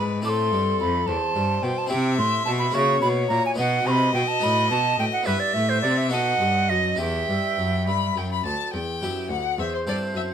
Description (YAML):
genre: classical, baroque-style sonata movement with continuo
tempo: 71 BPM (dotted quarters)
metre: 6/8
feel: straight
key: E minor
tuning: A4 = 440 Hz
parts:
  - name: rich violin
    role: melody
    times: 0.0-10.2 s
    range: A4 to B5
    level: -27 LUFS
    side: left 8 dB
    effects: none
  - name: bright wooden flute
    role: second line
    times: 0.0-10.3 s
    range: B4 to D6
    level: -24 LUFS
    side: right 4 dB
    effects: none
  - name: harpsichord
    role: accompaniment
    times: 0.0-10.3 s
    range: D2 to B4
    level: -29 LUFS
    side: left 1 dB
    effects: none
  - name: rich cello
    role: bass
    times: 0.0-10.3 s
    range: D2 to C#3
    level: -26 LUFS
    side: equal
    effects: none
room: light reverb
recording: none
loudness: -20 LUFS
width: side -8 dB against mid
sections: 0.0-8.7 A section; 8.7-10.3 B section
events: none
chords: 0.2 Am; 1.9 C; 2.7 F#7; 3.6 B; 4.4 B7/A; 5.3 Em/G; 6.1 B7; 7.0 Em; 9.6 Am/E